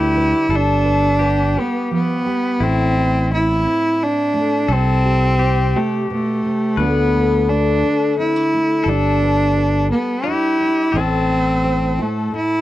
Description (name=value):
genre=acoustic folk-pop ballad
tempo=86 BPM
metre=3/4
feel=straight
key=unclear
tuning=A4 = 435 Hz
part: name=rich cello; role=melody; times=0.0-12.6 s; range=A3 to E4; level=-17 LUFS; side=right 1 dB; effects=none
part: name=pedal steel guitar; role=second line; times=0.0-12.6 s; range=E4 to B4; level=-27 LUFS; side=left 8 dB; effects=none
part: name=nylon-string guitar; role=accompaniment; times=0.0-12.6 s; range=A2 to C5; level=-24 LUFS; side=left 1 dB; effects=none
part: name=fingered electric bass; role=bass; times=0.0-12.0 s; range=G1 to D2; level=-19 LUFS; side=equal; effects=none
room=little or no reverb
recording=dry, close 1970s-style studio recording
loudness=-15 LUFS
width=side -15 dB against mid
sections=0.5-12.6 A section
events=none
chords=0.0 G; 2.6 Am; 4.7 C; 6.8 D5; 8.9 G6; 10.9 Am